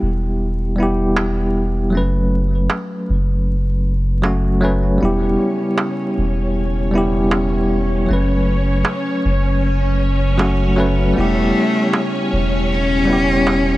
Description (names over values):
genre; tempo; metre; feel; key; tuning
trip hop; 78 BPM; 4/4; swing 59% on 16ths; E dorian; A4 = 439 Hz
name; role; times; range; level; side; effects
bell-like tine electric piano; accompaniment; 0.0-13.8 s; F#3 to B4; -19 LUFS; equal; tremolo, tape echo
soft dub sub bass; bass; 0.0-13.8 s; E1 to F#1; -19 LUFS; equal; none
darbuka; percussion; 1.2-13.7 s; none; -24 LUFS; right 3 dB; none
string machine, cellos; sustained chords; 5.0-13.8 s; C#4 to C#5; -23 LUFS; equal; ensemble chorus, vintage 12-bit sampler grit
rich cello; melody; 11.2-13.8 s; A3 to C#4; -18 LUFS; left 1 dB; tape echo
room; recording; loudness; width
light reverb, small room ambience; vinyl crackle, nothing above 10.4 kHz; -15 LUFS; side -17 dB against mid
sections
0.0-13.8 A section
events
none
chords
0.0 Em; 1.9 F#m; 5.0 Em; 8.1 F#m; 11.2 Em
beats
0.40 1.17 | 1.93 2.70 3.47 4.24 | 5.01 5.78 6.55 7.32 | 8.09 8.86 9.63 10.39 | 11.16 11.93 12.70 13.47